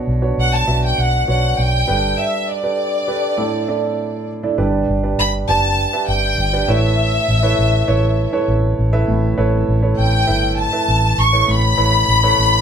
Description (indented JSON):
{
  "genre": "piano-driven pop",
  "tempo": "100 BPM",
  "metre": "4/4",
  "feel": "straight",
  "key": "unclear",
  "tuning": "A4 = 440 Hz",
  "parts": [
    { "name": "warm grand piano", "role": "accompaniment", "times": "0.0-12.6 s", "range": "G2 to E5", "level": "-20 LUFS", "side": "right 4 dB", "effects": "none" },
    { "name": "vintage muted fingered electric bass", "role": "bass", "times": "0.1-12.6 s", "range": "F#1 to B1", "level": "-18 LUFS", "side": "equal", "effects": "none" },
    { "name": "rich studio violin section", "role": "melody", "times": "0.4-12.6 s", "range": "D5 to C#6", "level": "-17 LUFS", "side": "left 2 dB", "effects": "none" }
  ],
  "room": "moderate studio reverb, RT60 0.5 s",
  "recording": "band playing live in one room",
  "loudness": "-14 LUFS",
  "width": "side -7 dB against mid",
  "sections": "0.0-4.6 A section; 4.6-12.6 B section",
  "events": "break 2.2-4.6",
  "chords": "0.0 Bmadd9; 1.9 Gadd9; 3.4 Asus4; 4.6 G; 6.7 Aadd9",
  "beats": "0.38 0.98 1.58 | 2.18 2.78 3.38 3.98 | 4.58 5.18 5.78 6.38 | 6.98 7.58 8.18 8.78 | 9.38 9.98 10.58 11.18 | 11.78 12.38"
}